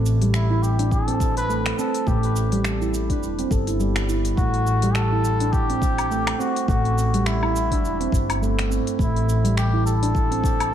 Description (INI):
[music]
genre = organic downtempo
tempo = 104 BPM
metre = 4/4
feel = swing 57% on 16ths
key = A dorian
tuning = A4 = 440 Hz
[part]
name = upright bass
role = bass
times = 0.0-10.7 s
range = E1 to A1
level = -23 LUFS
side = equal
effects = tube saturation, sidechain pumping
[part]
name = bronze singing bowl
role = texture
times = 0.0-10.7 s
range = C4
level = -45 LUFS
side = left 7 dB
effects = none
[part]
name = organic electronic drum kit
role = drums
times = 0.1-10.7 s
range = cabasa, finger snaps, hi-hat, woodblock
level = -30 LUFS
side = left 2 dB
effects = none
[part]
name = handpan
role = arpeggios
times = 0.2-10.4 s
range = G3 to A4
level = -25 LUFS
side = right 3 dB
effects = diffuse ambient delay
[part]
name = trumpet with cup mute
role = melody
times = 0.3-10.7 s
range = E4 to B4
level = -27 LUFS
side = left 2 dB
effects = ping-pong delay
[part]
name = electronic kick drum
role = drums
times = 0.9-10.6 s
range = none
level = -23 LUFS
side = equal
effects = none
[sound]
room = moderate plate reverb, RT60 1.9 s, studio ambience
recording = dreamy mix soaked in reverb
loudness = -19 LUFS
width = side -10 dB against mid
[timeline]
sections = 0.0-10.7 A section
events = none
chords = 0.0 Am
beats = 0.34 0.92 1.49 | 2.07 2.65 3.23 3.80 | 4.38 4.96 5.53 6.11 | 6.69 7.26 7.84 8.42 | 8.99 9.57 10.15 10.72